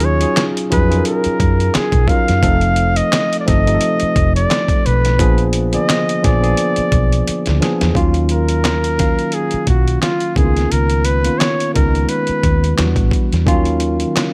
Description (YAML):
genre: R&B, neo-soul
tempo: 87 BPM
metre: 4/4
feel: swing 55% on 16ths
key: Eb minor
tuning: A4 = 439 Hz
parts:
  - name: warm flugelhorn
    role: melody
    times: 0.0-12.8 s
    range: F4 to F5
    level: -22 LUFS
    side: equal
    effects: none
  - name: tine electric piano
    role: accompaniment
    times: 0.0-14.3 s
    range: D3 to F5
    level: -21 LUFS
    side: equal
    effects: none
  - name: vintage muted fingered electric bass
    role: bass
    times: 0.0-14.0 s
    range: F1 to Gb2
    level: -19 LUFS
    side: equal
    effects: none
  - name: dusty soul sampler-style drum kit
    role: drums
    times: 0.0-14.3 s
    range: handclaps, hi-hat, kick drum, snare drum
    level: -20 LUFS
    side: equal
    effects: overdrive
room: little or no reverb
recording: none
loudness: -15 LUFS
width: mono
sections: 0.0-8.0 A section; 8.0-14.3 B section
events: drum fill 7.3-8.0; flugelhorn solo 8.0-14.3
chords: 0.0 Ebm11; 2.4 F7; 5.2 Bb7b9; 8.0 Ebm9; 10.4 Db13; 12.8 Em9; 13.5 Ebm9